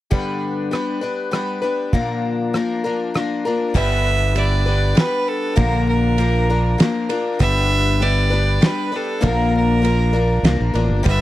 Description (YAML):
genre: folk rock and heartland rock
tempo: 99 BPM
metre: 3/4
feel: straight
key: unclear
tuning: A4 = 442 Hz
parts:
  - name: picked twelve-string acoustic guitar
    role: accompaniment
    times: 0.1-11.2 s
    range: G2 to B4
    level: -20 LUFS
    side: left 3 dB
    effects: none
  - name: damped 70s drum kit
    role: drums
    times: 0.1-11.2 s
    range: crash cymbal, kick drum, ride cymbal, rim click, snare drum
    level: -18 LUFS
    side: right 1 dB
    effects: none
  - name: bright fiddle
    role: melody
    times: 3.8-11.2 s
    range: A4 to E5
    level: -23 LUFS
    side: right 3 dB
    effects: tape echo
  - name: fingered electric bass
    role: bass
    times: 3.8-11.2 s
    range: G1 to C2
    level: -18 LUFS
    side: right 1 dB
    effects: none
room: little or no reverb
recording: dry, close 1970s-style studio recording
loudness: -16 LUFS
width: side -15 dB against mid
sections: 0.1-3.8 A section; 3.8-11.2 B section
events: none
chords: 0.1 G; 1.9 Bb; 3.8 G; 5.6 Bb; 7.4 G; 9.2 Bb